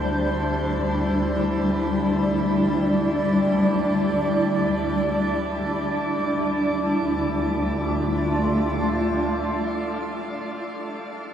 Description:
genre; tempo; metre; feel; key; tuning
ambient; free time; none; none; D minor; A4 = 440 Hz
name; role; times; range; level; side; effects
granular cloud pad; sustained chords; 0.0-10.6 s; G3 to D5; -21 LUFS; equal; built-in reverb
muted studio double bass section; bass; 0.0-9.4 s; D2; -30 LUFS; equal; none
room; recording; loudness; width
wet shimmer reverb, RT60 9.3 s; none; -21 LUFS; side -9 dB against mid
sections
0.0-7.0 A section; 7.0-10.2 B section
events
none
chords
0.0 Cadd9/D; 7.0 Dm

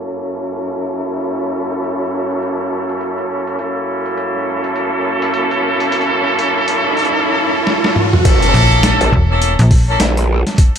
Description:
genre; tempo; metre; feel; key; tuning
glitch hop; 103 BPM; 4/4; swing 60% on 16ths; unclear; A4 = 441 Hz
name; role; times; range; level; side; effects
clear horn section; stabs; 0.0-10.0 s; F#2 to A4; -16 LUFS; equal; sidechain pumping, diffuse ambient delay
boom bap sampler-style drum kit; drums; 0.1-10.8 s; crash cymbal, hi-hat, snare drum, toms; -19 LUFS; equal; overdrive, low-pass filter on hats, low-pass filter on snare, low-pass filter on toms, low-pass filter on cymbals
riser and impact; sound effects; 5.3-10.6 s; none; -22 LUFS; right 1 dB; none
growl bass; bass; 8.3-10.4 s; F#1 to A#1; -15 LUFS; equal; chorus, overdrive
electronic kick drum; drums; 8.3-10.7 s; none; -11 LUFS; equal; overdrive
slap-like FM bass; bass; 8.5-10.0 s; E1 to A#1; -12 LUFS; equal; none
room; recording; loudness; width
moderate plate reverb, RT60 1.3 s, digital ambience; dreamy mix soaked in reverb, low-pass filter; -13 LUFS; side -8 dB against mid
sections
0.0-8.3 A section; 8.3-10.8 B section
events
filter sweep 0.0-8.3; riser 5.3-8.3; drum fill 7.7-8.3; drop 8.3-10.8; impact 8.3-10.6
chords
0.0 F#7#9; 8.3 F#7#9 (rootless)

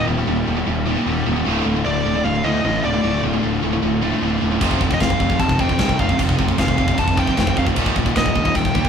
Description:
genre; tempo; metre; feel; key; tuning
heavy metal; 152 BPM; 4/4; straight; D phrygian; A4 = 440 Hz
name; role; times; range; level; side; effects
high-gain lead guitar; melody; 0.0-8.9 s; D5 to A5; -23 LUFS; equal; distortion
distorted electric guitar; riff; 0.0-8.9 s; D2 to G4; -24 LUFS; equal; distortion
heavy high-gain guitar; riff; 0.0-8.9 s; D2 to F3; -25 LUFS; left 8 dB; distortion
tight distorted guitar; riff; 0.0-8.9 s; D2 to F3; -24 LUFS; right 7 dB; distortion
fuzz picked electric bass; bass; 0.0-8.9 s; D1 to F2; -23 LUFS; equal; overdrive
tight metal drum kit; drums; 4.6-8.9 s; crash cymbal, kick drum, snare drum; -20 LUFS; equal; none
room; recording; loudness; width
moderate large studio reverb, RT60 1.4 s; band playing live in one room; -16 LUFS; side -7 dB against mid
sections
0.0-8.9 A section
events
none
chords
0.0 Eb; 1.5 Dm; 4.6 F; 7.8 Eb

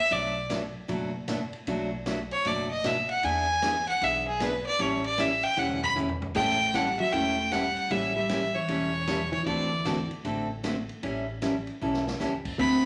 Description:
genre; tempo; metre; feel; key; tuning
country, western swing; 154 BPM; 4/4; swing 64% on 8ths; A mixolydian; A4 = 440 Hz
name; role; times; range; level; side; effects
clear fiddle; melody; 0.0-10.1, 12.6-12.9 s; G#4 to B5; -29 LUFS; equal; none
picked steel-string acoustic guitar; accompaniment; 0.1-12.8 s; B2 to A4; -33 LUFS; equal; none
upright bass; bass; 0.1-12.9 s; E1 to E2; -42 LUFS; equal; none
vintage drum kit; drums; 0.1-12.5 s; crash cymbal, hi-hat, kick drum, ride cymbal, snare drum, toms; -41 LUFS; equal; none
hollow-body jazz guitar; second line; 6.4-10.1, 12.6-12.9 s; E3 to C4; -33 LUFS; equal; none
room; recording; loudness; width
wet large studio reverb, RT60 0.8 s; none; -28 LUFS; mono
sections
0.0-6.3 A section; 6.3-12.9 B section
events
fiddle solo 0.0-6.3; drum fill 5.6-6.3, 11.8-12.2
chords
0.1 Bm7; 3.2 E7; 4.8 A7; 9.5 D9; 11.0 A9

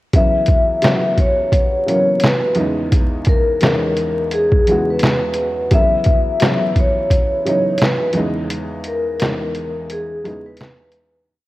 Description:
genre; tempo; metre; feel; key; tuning
lo-fi hip hop; 86 BPM; 4/4; swing 57% on 16ths; C# dorian; A4 = 440 Hz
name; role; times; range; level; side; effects
warm upright piano; accompaniment; 0.1-11.3 s; E2 to F#4; -21 LUFS; equal; cassette tape, low-pass filter
trip hop sampler-style drum kit; drums; 0.1-11.1 s; handclaps, hi-hat, kick drum, snare drum; -16 LUFS; equal; cassette tape
vibraphone with medium mallets; melody; 0.2-11.3 s; G#4 to E5; -18 LUFS; left 1 dB; low-pass filter
room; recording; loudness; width
light reverb; home recording on cassette, vinyl crackle; -14 LUFS; side -17 dB against mid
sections
0.1-11.3 A section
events
break 8.5-11.3; fade-out 8.5-11.3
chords
0.1 F#7sus4; 2.6 C#m9/E; 5.7 F#7sus4; 8.2 C#m9/E

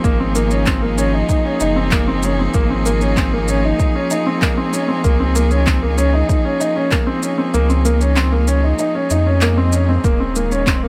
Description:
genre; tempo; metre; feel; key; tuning
piano and strings electronica; 96 BPM; 4/4; straight; unclear; A4 = 440 Hz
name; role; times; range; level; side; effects
rich string quartet; sustained chords; 0.0-10.9 s; Eb3 to Ab4; -25 LUFS; equal; none
warm baby grand piano; riff; 0.0-10.9 s; Bb3 to Eb4; -21 LUFS; equal; none
warm sub bass; bass; 0.0-10.9 s; Eb1 to F2; -20 LUFS; equal; sidechain pumping
electronic kick drum; drums; 0.0-10.8 s; none; -20 LUFS; equal; none
electronic shaker and handclaps; drums; 0.0-10.8 s; none; -26 LUFS; equal; none
swell; sound effects; 9.5-10.0 s; none; -36 LUFS; equal; none
room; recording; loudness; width
light reverb; none; -16 LUFS; mono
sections
0.0-10.9 A section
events
kick drops out 7.5-10.0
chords
0.0 Absus2; 5.0 Db; 10.0 Eb5

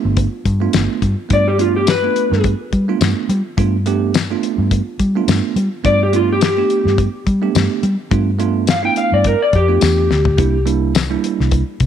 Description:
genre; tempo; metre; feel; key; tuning
straight-eighth soul blues; 106 BPM; 4/4; swing 55% on 16ths; G mixolydian; A4 = 440 Hz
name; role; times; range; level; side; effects
bell-like tine electric piano; accompaniment; 0.0-11.6 s; G3 to G4; -20 LUFS; right 12 dB; none
vintage muted fingered electric bass; bass; 0.0-11.9 s; G1 to G3; -17 LUFS; equal; none
damped 70s drum kit; drums; 0.2-11.9 s; hi-hat, kick drum, snare drum, tambourine, toms; -18 LUFS; left 4 dB; none
electric slide guitar; melody; 1.3-2.4, 5.9-10.6 s; F4 to G5; -16 LUFS; left 2 dB; none
room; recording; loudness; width
light reverb, studio reverb; 1960s-style stereo; -13 LUFS; side -9 dB against mid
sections
0.0-1.3 A section; 1.3-11.9 A section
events
electric slide guitar solo 1.3-11.9; drum fill 10.1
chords
0.0 G9; 10.4 C9

